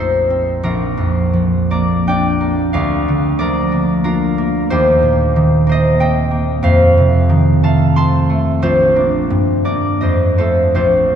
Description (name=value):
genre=classical, solo harp piece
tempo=78-94 BPM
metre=3/4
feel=rubato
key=Bb major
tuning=A4 = 440 Hz
part: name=concert harp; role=solo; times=0.0-11.2 s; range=Bb1 to C6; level=-12 LUFS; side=equal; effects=none
room=wet church reverb, RT60 3.1 s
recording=dark, warm production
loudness=-12 LUFS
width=side -8 dB against mid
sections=0.0-11.2 A section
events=none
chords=0.0 F7/Bb; 0.6 Bb; 2.7 Bb/D; 4.7 Cm7/Eb; 6.6 F7; 8.6 Bb; 9.3 Gm; 10.0 F7